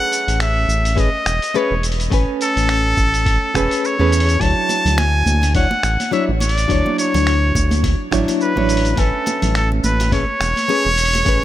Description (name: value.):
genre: sunset chillout.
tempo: 105 BPM.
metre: 4/4.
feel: swing 57% on 16ths.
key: D lydian.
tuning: A4 = 440 Hz.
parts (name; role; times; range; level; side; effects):
trumpet with straight mute; melody; 0.0-11.4 s; A4 to A5; -19 LUFS; equal; tape echo.
nylon-string guitar; accompaniment; 0.0-11.4 s; F#3 to G#5; -21 LUFS; moving between left 6 dB and right 1 dB; auto-pan.
dusty soul sampler-style drum kit; drums; 0.1-11.4 s; finger snaps, hi-hat, shaker; -25 LUFS; equal; none.
round analog bass; bass; 0.3-11.4 s; E1 to E2; -18 LUFS; equal; none.
electronic kick drum; drums; 1.0-11.4 s; none; -20 LUFS; equal; none.
congas; percussion; 4.7-11.2 s; none; -26 LUFS; right 2 dB; none.
room: light reverb, digital ambience.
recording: none.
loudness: -14 LUFS.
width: side -13 dB against mid.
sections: 0.0-11.4 A section.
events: none.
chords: 0.0 Amaj9; 4.4 Dmaj9; 9.0 Amaj9.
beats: 0.41 0.98 1.55 | 2.12 2.69 3.26 3.83 | 4.41 4.98 5.55 6.12 | 6.69 7.26 7.83 8.41 | 8.98 9.55 10.12 10.69 | 11.26.